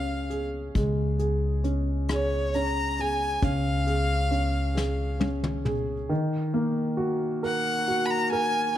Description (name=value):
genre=acoustic folk-pop ballad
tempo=45 BPM (dotted quarters)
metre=6/8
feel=straight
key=Eb minor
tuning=A4 = 440 Hz
part: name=clear violin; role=melody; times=0.0-8.8 s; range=Db5 to Cb6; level=-28 LUFS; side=left 1 dB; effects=slapback echo
part: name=warm upright piano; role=accompaniment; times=0.0-8.8 s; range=Eb3 to Bb4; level=-28 LUFS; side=equal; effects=none
part: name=upright bass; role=bass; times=0.0-6.1 s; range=Db2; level=-28 LUFS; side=equal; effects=none
part: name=vintage brush drum kit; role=drums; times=0.3-5.9 s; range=hi-hat, kick drum, rim click, snare drum, toms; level=-30 LUFS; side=left 2 dB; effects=none
room=light reverb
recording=dark, warm production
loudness=-24 LUFS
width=side -12 dB against mid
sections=0.0-6.1 A section; 6.1-8.8 B section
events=drum fill 4.8-6.1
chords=0.0 Db; 6.1 Ebm